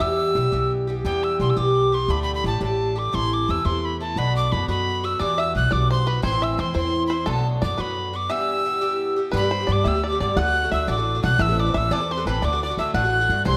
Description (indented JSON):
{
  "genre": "celtic folk, Celtic jig",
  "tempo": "116 BPM (dotted quarters)",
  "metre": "6/8",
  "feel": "straight",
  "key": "E minor, G major from 9.3 s",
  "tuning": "A4 = 441 Hz",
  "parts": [
    { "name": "bright wooden whistle", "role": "melody", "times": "0.0-13.6 s", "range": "G5 to F#6", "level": "-27 LUFS", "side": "equal", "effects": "none" },
    { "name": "bluegrass banjo", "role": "second line", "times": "0.0-0.7, 5.2-13.6 s", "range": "A4 to F#5", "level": "-31 LUFS", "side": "equal", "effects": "none" },
    { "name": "Irish bouzouki", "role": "accompaniment", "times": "0.0-13.6 s", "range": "G2 to B4", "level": "-28 LUFS", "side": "equal", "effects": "none" },
    { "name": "upright bass", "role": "bass", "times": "0.0-13.6 s", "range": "A1 to G2", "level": "-26 LUFS", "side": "equal", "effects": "none" }
  ],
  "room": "moderate recital hall reverb, RT60 1.5 s",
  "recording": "none",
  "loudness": "-22 LUFS",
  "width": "mono",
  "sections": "0.0-1.1 A section; 1.1-9.3 A section; 9.3-13.6 B section",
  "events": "none",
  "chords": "0.0 Em; 2.1 Dsus4; 3.1 Am; 4.2 Bm; 5.2 Emadd9; 6.2 Am; 7.3 Bm7; 8.3 Em; 9.3 G; 10.4 D; 11.4 Amadd9; 12.4 D"
}